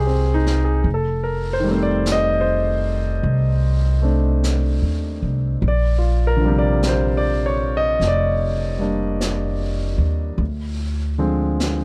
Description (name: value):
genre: jazz ballad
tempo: 50 BPM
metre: 4/4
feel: swing 66% on 8ths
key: unclear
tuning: A4 = 440 Hz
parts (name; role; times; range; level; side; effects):
- clear concert grand piano; accompaniment; 0.0-11.8 s; C3 to Eb5; -23 LUFS; equal; none
- upright bass; bass; 0.0-11.8 s; F1 to Eb2; -22 LUFS; equal; none
- jazz brush drum kit; drums; 0.5-11.8 s; brushed snare drum, hi-hat, snare drum; -34 LUFS; equal; none
room: little or no reverb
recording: none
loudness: -20 LUFS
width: mono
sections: 0.0-11.8 A section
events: none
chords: 0.0 Dbmaj9; 0.9 F7; 5.6 Bb69; 10.4 Dm7b5